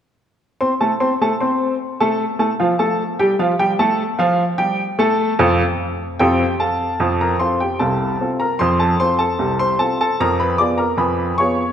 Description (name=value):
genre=ragtime piano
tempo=75 BPM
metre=2/4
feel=straight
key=F major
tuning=A4 = 439 Hz
part: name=clear upright piano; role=solo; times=0.6-11.7 s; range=C2 to D6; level=-16 LUFS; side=equal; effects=none
room=wet concert hall reverb, RT60 2.1 s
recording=none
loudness=-16 LUFS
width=side -9 dB against mid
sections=0.6-7.0 A section; 7.0-11.7 B section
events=none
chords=0.6 F; 10.2 Fdim7